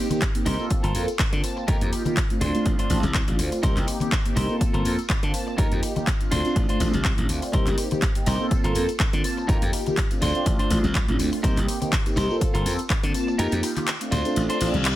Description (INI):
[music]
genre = filtered disco house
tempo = 123 BPM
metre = 4/4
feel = swing 54% on 16ths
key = C dorian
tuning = A4 = 441 Hz
[part]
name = mellow synth brass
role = accompaniment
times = 0.0-14.7 s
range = A3 to A5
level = -27 LUFS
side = equal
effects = chorus, phaser, sidechain pumping, low-pass filter
[part]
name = clean electric guitar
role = riff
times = 0.1-14.9 s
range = D4 to C5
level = -31 LUFS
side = right 1 dB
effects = sidechain pumping, low-pass filter
[part]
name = house drum kit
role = drums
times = 0.1-15.0 s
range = handclaps, hi-hat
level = -30 LUFS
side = left 1 dB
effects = studio reverb, sidechain pumping on hats, sidechain pumping on cymbals
[part]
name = congas and tambourine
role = percussion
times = 0.1-15.0 s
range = none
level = -33 LUFS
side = left 3 dB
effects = sidechain pumping on perc, low-pass filter on perc
[part]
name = electronic kick drum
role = drums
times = 0.2-13.0 s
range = none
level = -24 LUFS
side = equal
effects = studio reverb
[part]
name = glassy slap bass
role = bass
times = 0.5-15.0 s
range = G1 to D3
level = -26 LUFS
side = equal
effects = sidechain pumping, low-pass filter
[part]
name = reverse cymbal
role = sound effects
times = 14.6-15.0 s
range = none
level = -31 LUFS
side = left 5 dB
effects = none
[sound]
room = little or no reverb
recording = none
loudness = -21 LUFS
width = side -14 dB against mid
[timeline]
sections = 0.0-15.0 A section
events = kick drops out 13.4-15.0; reverse cymbal 14.6-15.0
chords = 0.0 Cm7; 0.7 Gm11 (rootless); 1.7 F9sus4; 2.4 Dm7; 3.6 Cm7; 4.6 Gm11 (rootless); 5.6 F9sus4; 6.3 Dm7; 7.5 Cm7; 8.5 Gm11 (rootless); 9.5 F9sus4; 10.2 Dm7; 11.4 Cm7; 12.4 Gm11 (rootless); 13.4 F9sus4; 14.1 Dm7